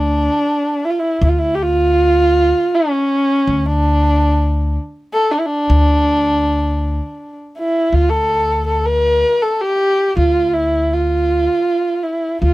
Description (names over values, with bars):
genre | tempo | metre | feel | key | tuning
Persian modal ensemble | 80 BPM | 3/4 | straight | D avaz esfahan | A4 = 440 Hz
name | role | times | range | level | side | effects
dark kamancheh | melody | 0.0-12.5 s | C#4 to Bb4+45c | -15 LUFS | equal | none
upright bass | bass | 0.0-12.5 s | D2 | -17 LUFS | equal | none
room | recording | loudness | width
little or no reverb | close, detailed microphones | -13 LUFS | side -18 dB against mid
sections
0.0-7.9 A section; 7.9-12.5 B section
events
none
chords
none